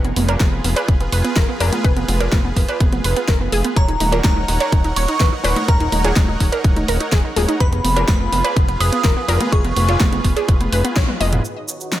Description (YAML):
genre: progressive house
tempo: 125 BPM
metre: 4/4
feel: straight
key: unclear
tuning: A4 = 439 Hz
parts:
  - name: supersaw pad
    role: sustained chords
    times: 0.0-12.0 s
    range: Eb3 to Gb5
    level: -26 LUFS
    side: right 2 dB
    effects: sidechain pumping, low-pass filter
  - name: analog pluck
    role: arpeggios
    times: 0.0-11.4 s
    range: Cb4 to Eb5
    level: -23 LUFS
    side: right 2 dB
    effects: chorus, sidechain pumping, digital delay
  - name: fat analog bass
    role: bass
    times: 0.0-11.4 s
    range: Eb1 to Cb2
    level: -20 LUFS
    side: equal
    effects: sidechain pumping
  - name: pop drum kit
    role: drums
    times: 0.0-12.0 s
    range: hi-hat, snare drum, toms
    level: -24 LUFS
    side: equal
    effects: none
  - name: congas, cowbell and bongos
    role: percussion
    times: 0.2-11.3 s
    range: none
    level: -26 LUFS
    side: left 2 dB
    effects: sidechain pumping on perc
  - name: electronic kick drum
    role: drums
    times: 0.4-11.1 s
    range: none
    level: -16 LUFS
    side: equal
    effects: none
  - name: glassy synth bell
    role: melody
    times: 3.8-10.0 s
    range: Bb5 to Eb6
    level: -23 LUFS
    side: right 1 dB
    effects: chorus, sidechain pumping, digital delay
  - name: cabasa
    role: percussion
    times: 11.4-12.0 s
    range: none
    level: -27 LUFS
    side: right 3 dB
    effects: none
room: light reverb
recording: none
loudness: -15 LUFS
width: side -13 dB against mid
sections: 0.0-11.4 A section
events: drum fill 11.0-11.4; band accent 11.0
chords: 0.0 Fdim; 3.8 Ebm7; 7.6 Fdim; 11.4 Ebm7